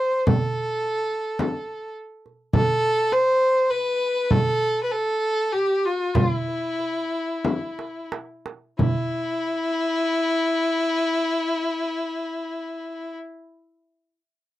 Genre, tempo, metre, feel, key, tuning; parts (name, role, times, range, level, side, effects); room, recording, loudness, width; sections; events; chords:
Arabic maqam ensemble; 87-108 BPM (eighths); 10/8; straight; E maqam bayati; A4 = 440 Hz
clear violin; melody; 0.0-13.1 s; E4 to C5; -22 LUFS; equal
darbuka; percussion; 0.3-9.4 s; -25 LUFS; right 4 dB
frame drum; percussion; 0.3-9.4 s; -23 LUFS; left 2 dB
little or no reverb; dry, close 1970s-style studio recording; -21 LUFS; side -14 dB against mid
0.0-8.8 A section; 8.8-14.6 B section
slowing down 0.0-8.8; drum fill 7.4-8.8